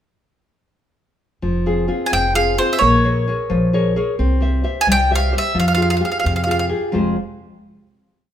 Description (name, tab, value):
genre	italian folk, Italian serenade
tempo	87 BPM (dotted quarters)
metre	6/8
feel	straight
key	F harmonic minor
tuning	A4 = 441 Hz
part	nylon-string guitar	accompaniment	1.4-7.2 s	F2 to E5	-19 LUFS	left 1 dB	none
part	upright bass	bass	1.4-7.2 s	F1 to F2	-21 LUFS	right 1 dB	none
part	bowl-back mandolin	melody	2.1-6.6 s	C5 to Ab5	-18 LUFS	right 1 dB	none
room	moderate recital hall reverb, RT60 1.4 s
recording	minimal, uncompressed stereo recording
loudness	-15 LUFS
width	side -10 dB against mid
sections	1.4-7.0 A section; 7.0-8.3 final chord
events	none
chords	1.4 Fm; 2.8 Bbm7; 4.2 C; 5.6 Fmadd9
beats	| 1.43 2.12 | 2.82 3.50 | 4.18 4.87 | 5.56 6.25 | 6.95